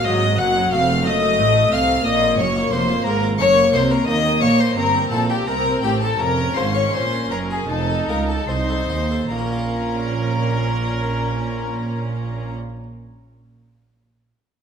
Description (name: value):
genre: classical, baroque-style concerto movement with solo episodes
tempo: 72-90 BPM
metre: 4/4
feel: straight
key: Bb minor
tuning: A4 = 440 Hz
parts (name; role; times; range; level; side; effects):
- rich chamber violin section; melody; 0.0-12.5 s; G5 to Gb6; -26 LUFS; left 3 dB; none
- warm violin; melody; 0.0-12.5 s; G4 to Gb5; -24 LUFS; left 3 dB; none
- rich chamber violin section; second line; 0.0-12.6 s; G4 to Gb5; -24 LUFS; left 4 dB; none
- harpsichord; accompaniment; 0.0-12.8 s; C2 to Db5; -29 LUFS; right 1 dB; none
- rich chamber viola section; accompaniment; 0.0-12.5 s; Gb3 to Eb4; -25 LUFS; equal; none
- rich chamber cello section; bass; 0.0-12.5 s; C2 to Eb3; -25 LUFS; right 4 dB; none
- rich chamber double bass section; bass; 0.0-12.6 s; F1 to Eb2; -25 LUFS; right 3 dB; none
room: wet recital hall reverb, RT60 1.8 s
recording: none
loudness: -17 LUFS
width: side -7 dB against mid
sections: 0.0-9.3 A section; 9.3-12.6 B section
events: slowing down 2.1-9.3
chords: 0.0 Cdim; 0.7 F7; 2.1 Bbm; 3.4 Ebm/Gb; 4.8 C7/G; 6.2 Bbm/F; 7.7 F7; 9.3 Bbm